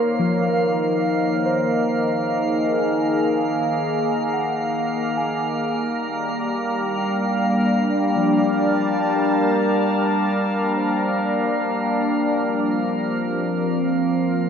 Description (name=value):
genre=ambient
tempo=free time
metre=none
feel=none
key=unclear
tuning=A4 = 442 Hz
part: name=evolving wavetable pad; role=sustained chords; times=0.0-14.5 s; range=Eb3 to A5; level=-21 LUFS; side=equal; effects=phaser, built-in reverb
part: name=muted felt-like synth keys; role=arpeggios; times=0.0-14.5 s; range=F3 to Ab5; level=-28 LUFS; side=equal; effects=chorus, phaser, diffuse ambient delay
part: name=organ-like drone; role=drone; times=0.0-14.5 s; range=Bb3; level=-26 LUFS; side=left 1 dB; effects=ensemble chorus, built-in reverb
part: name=drifting glass-harmonics texture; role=texture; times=0.0-14.5 s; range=F5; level=-28 LUFS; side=right 2 dB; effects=chorus, built-in reverb
room=wet lush hall reverb, RT60 2.8 s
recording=none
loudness=-19 LUFS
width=side -7 dB against mid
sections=0.0-14.5 A section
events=fade-out on synth keys 0.0-14.5; fade-out on synth texture 0.0-14.5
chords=0.0 Ebsus4; 5.6 Gm; 12.1 F5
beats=free time